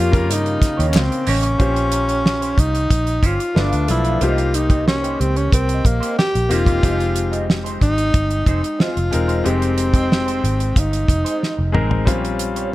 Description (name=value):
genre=lush 1970s-style soul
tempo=92 BPM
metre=4/4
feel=straight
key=Bb dorian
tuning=A4 = 440 Hz
part: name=breathy tenor saxophone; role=melody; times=0.0-11.8 s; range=Bb3 to G4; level=-21 LUFS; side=equal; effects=none
part: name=clear baby grand piano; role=accompaniment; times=0.0-12.7 s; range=Db3 to C5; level=-25 LUFS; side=left 3 dB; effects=none
part: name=vintage muted fingered electric bass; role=bass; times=0.0-12.7 s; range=E1 to G2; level=-20 LUFS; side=equal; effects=none
part: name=worn celesta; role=texture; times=0.0-12.4 s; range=G4 to Bb5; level=-34 LUFS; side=right 4 dB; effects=none
part: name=electric guitar through a small old amp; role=riff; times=0.1-12.7 s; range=G3 to Eb5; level=-30 LUFS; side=right 4 dB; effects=wah, spring reverb
part: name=damped 70s drum kit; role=drums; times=0.1-12.7 s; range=hi-hat, kick drum, snare drum, toms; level=-18 LUFS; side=equal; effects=none
part: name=group handclap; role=percussion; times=0.9-1.1 s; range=none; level=-27 LUFS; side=left 5 dB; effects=none
room=studio ambience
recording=none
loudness=-15 LUFS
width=side -16 dB against mid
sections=0.0-1.6 A section; 1.6-12.7 B section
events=drum fill 11.4-12.1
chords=0.0 Eb7; 1.6 Bbm69; 3.6 G7; 4.2 Cm7; 6.8 Fm7; 12.1 Bbm69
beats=0.29 0.95 | 1.60 2.25 2.91 3.56 | 4.22 4.87 5.53 6.18 | 6.83 7.49 8.14 8.80 | 9.45 10.11 10.76 11.41 | 12.07 12.72